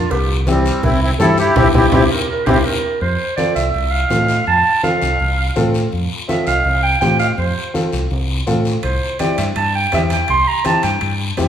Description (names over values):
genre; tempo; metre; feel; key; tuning
latin, cumbia; 165 BPM; 4/4; straight; F major; A4 = 444 Hz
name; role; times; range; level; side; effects
growling clarinet; second line; 0.0-11.2 s; F4 to C6; -18 LUFS; right 3 dB; none
fingered electric bass; bass; 0.0-11.5 s; C2 to A2; -20 LUFS; equal; none
cowbell and timbales; percussion; 0.1-2.6, 8.8-11.5 s; none; -27 LUFS; right 2 dB; none
guiro; percussion; 0.1-11.5 s; none; -29 LUFS; left 4 dB; none
accordion; melody; 0.5-2.6 s; G3 to A4; -18 LUFS; right 1 dB; light tremolo tuning
warm upright piano; accompaniment; 0.5-11.5 s; C4 to A4; -21 LUFS; left 2 dB; none
congas; percussion; 0.5-11.5 s; none; -22 LUFS; equal; none
room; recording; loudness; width
wet large studio reverb, RT60 1.3 s; band playing live in one room; -14 LUFS; side -9 dB against mid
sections
0.0-3.0 A section; 3.0-11.5 B section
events
band accent 1.6-3.0; drum fill 2.1-3.0; clarinet solo 3.0-11.5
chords
0.1 C7; 3.0 F; 8.8 C